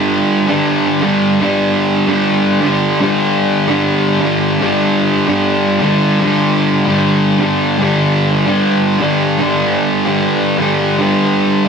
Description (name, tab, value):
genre	rock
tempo	150 BPM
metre	4/4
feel	swing 67% on 8ths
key	unclear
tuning	A4 = 444 Hz
part	thick fuzz guitar	solo	0.0-11.7 s	G2 to G3	-11 LUFS	equal	distortion
room	light reverb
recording	none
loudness	-11 LUFS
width	side -6 dB against mid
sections	0.0-11.7 A section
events	none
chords	0.0 G5